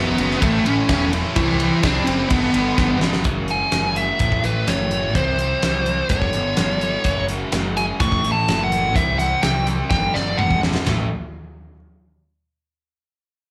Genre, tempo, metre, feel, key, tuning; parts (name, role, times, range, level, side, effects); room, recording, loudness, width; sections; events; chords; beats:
quiet-loud alternative rock; 126 BPM; 4/4; straight; A4 = 445 Hz
smooth overdriven lead guitar; melody; 0.0-10.6 s; E3 to C#6; -23 LUFS; equal; slapback echo
tight distorted guitar; riff; 0.0-3.2 s; G2 to F#4; -29 LUFS; equal; distortion, slapback echo
tight distorted guitar; riff; 0.0-11.1 s; F#2 to C4; -30 LUFS; equal; distortion, slapback echo
fuzz picked electric bass; bass; 0.0-11.1 s; E1 to C2; -27 LUFS; equal; overdrive
big rock drum kit; drums; 0.2-11.0 s; hi-hat, kick drum, ride cymbal, snare drum, toms; -25 LUFS; equal
twelve-string electric guitar; arpeggios; 3.2-11.1 s; G2 to A4; -32 LUFS; equal
little or no reverb; live gig heard through the venue's PA, club reverb; -19 LUFS; mono
0.0-3.3 A section; 3.3-10.9 B section; 10.9-12.8 C section
drum fill 2.8-3.3, 9.9-10.9; lead electric guitar solo 3.3-10.9
0.4 A; 1.4 C; 2.3 G; 3.3 F#sus2; 4.2 A; 5.2 C; 6.1 G5; 7.1 F#sus2; 8.0 A5; 9.0 C; 9.9 G5; 10.9 A5
0.42 0.89 | 1.36 1.83 2.31 2.78 | 3.25 3.73 4.20 4.68 | 5.15 5.63 6.10 6.58 | 7.05 7.53 8.01 8.48 | 8.96 9.43 9.91 10.38 | 10.86